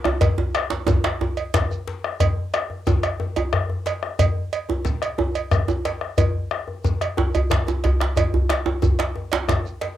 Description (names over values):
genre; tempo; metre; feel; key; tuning
west african traditional, West African drum ensemble; 121 BPM (dotted quarters); 12/8; straight; none; none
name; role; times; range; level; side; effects
bombo; percussion; 0.0-9.6 s; none; -25 LUFS; left 2 dB; none
djembe; percussion; 0.1-9.6 s; none; -22 LUFS; right 2 dB; none
cowbell; percussion; 0.2-10.0 s; none; -27 LUFS; right 8 dB; none
djembe; percussion; 0.2-10.0 s; none; -24 LUFS; left 2 dB; none
shekere; percussion; 0.2-9.7 s; none; -33 LUFS; right 1 dB; none
room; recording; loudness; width
wet small room ambience, RT60 0.5 s; home recording on cassette; -20 LUFS; side -12 dB against mid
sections
0.0-10.0 A section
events
none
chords
none